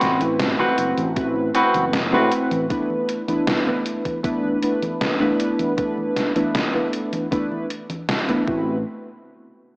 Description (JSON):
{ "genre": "vaporwave", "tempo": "78 BPM", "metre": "4/4", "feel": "straight", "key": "A dorian", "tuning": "A4 = 441 Hz", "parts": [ { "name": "warbly lo-fi synth keys", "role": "accompaniment", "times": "0.0-8.8 s", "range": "A3 to B4", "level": "-21 LUFS", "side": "equal", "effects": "analog chorus, analog delay" }, { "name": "semi-hollow electric guitar", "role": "riff", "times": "0.0-2.6 s", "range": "C4 to B4", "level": "-20 LUFS", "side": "equal", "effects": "lush chorus, analog delay" }, { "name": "sustaining fretless electric bass", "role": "bass", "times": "0.0-2.7, 8.5-8.8 s", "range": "F#1 to A2", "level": "-27 LUFS", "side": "equal", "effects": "tube saturation" }, { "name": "gated 80s digital drum machine", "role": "drums", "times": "0.0-8.4 s", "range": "congas, hi-hat, snare drum", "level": "-26 LUFS", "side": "equal", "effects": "gated reverb, gated reverb snare, overdrive, vintage 12-bit sampler grit" }, { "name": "electronic kick drum", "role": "drums", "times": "1.2-8.6 s", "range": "none", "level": "-31 LUFS", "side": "equal", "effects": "overdrive, vintage 12-bit sampler grit" } ], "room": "moderate lush hall reverb, RT60 2.4 s", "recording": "cassette tape, small speaker sound", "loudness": "-19 LUFS", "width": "side -26 dB against mid", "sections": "0.0-8.9 A section", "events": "none", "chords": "0.0 Am69; 2.7 E7sus4; 8.5 Am69; 8.9 N.C." }